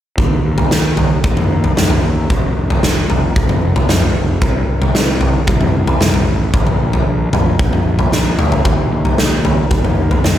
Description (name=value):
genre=quiet-loud alternative rock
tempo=113 BPM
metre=4/4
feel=straight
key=unclear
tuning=A4 = 439 Hz
part: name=fuzz fingered electric bass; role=bass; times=0.2-10.4 s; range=F1 to Eb2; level=-18 LUFS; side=equal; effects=overdrive
part: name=big rock drum kit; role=drums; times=0.2-10.4 s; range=kick drum, snare drum, toms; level=-13 LUFS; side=equal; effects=none
room=light reverb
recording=none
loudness=-12 LUFS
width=side -11 dB against mid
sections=0.2-10.4 A section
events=drum fill 8.1-8.7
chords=none